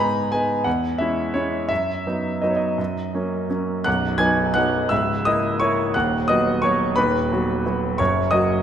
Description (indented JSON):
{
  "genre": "classical, piano waltz",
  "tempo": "161-187 BPM",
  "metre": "3/4",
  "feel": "rubato",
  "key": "B major",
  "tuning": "A4 = 440 Hz",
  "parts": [
    { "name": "clear concert grand piano", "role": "solo", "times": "0.0-8.6 s", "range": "B0 to G#6", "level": "-19 LUFS", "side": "equal", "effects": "none" }
  ],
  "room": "moderate concert hall reverb, RT60 2.3 s",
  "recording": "none",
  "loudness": "-19 LUFS",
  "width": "side -9 dB against mid",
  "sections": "0.0-3.9 A section; 3.9-8.6 B section",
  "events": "none",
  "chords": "0.0 G#m; 0.7 C#m/E; 1.7 B/F#; 2.8 F#; 3.9 B; 4.9 A#dim/C#; 5.9 B/D#; 8.0 F#"
}